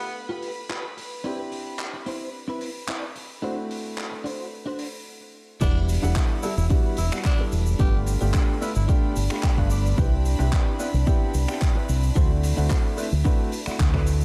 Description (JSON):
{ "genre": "nu-disco, nu disco", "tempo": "110 BPM", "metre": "4/4", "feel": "straight", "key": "E minor", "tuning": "A4 = 438 Hz", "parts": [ { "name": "raspy tenor saxophone", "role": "melody", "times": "0.0-0.2, 5.6-8.8 s", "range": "B3 to G4", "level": "-38 LUFS", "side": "equal", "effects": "dub echo" }, { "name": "warm baby grand piano", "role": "accompaniment", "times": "0.0-14.2 s", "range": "G3 to F#5", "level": "-34 LUFS", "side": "equal", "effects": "sidechain pumping, delay" }, { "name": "clear studio string section", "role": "sustained chords", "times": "0.0-14.2 s", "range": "D4 to B5", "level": "-41 LUFS", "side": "equal", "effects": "sidechain pumping" }, { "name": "direct-recorded clean electric guitar", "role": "riff", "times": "0.0-14.1 s", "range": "C4 to G5", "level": "-37 LUFS", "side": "equal", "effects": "ensemble chorus, delay" }, { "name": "tight funk drum kit", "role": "drums", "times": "0.4-14.2 s", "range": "crash cymbal, finger snaps, handclaps, hi-hat, shaker", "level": "-37 LUFS", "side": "equal", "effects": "low-pass filter on hats, studio ambience, low-pass filter on cymbals, low-pass filter on snare, low-pass filter on perc, low-pass filter on room" }, { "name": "fingered electric bass with an envelope filter", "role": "bass", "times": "5.6-14.2 s", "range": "E1 to D2", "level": "-24 LUFS", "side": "equal", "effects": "sidechain pumping" }, { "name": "electronic kick drum", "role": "drums", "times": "5.6-14.0 s", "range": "none", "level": "-24 LUFS", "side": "equal", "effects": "studio ambience" } ], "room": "light reverb, studio ambience", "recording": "dark, warm production", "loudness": "-24 LUFS", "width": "mono", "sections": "0.0-5.6 A section; 5.6-14.2 B section", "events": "filter sweep on grand piano 0.0-5.6; filter sweep on string section 0.0-5.6; break 5.1-5.6; drop 5.6-14.2; clean electric guitar fill 9.2-10.0", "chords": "0.0 G7; 1.3 Cmaj7; 3.4 D7; 5.6 Em7; 7.8 G7; 10.0 Cmaj7; 12.2 D7" }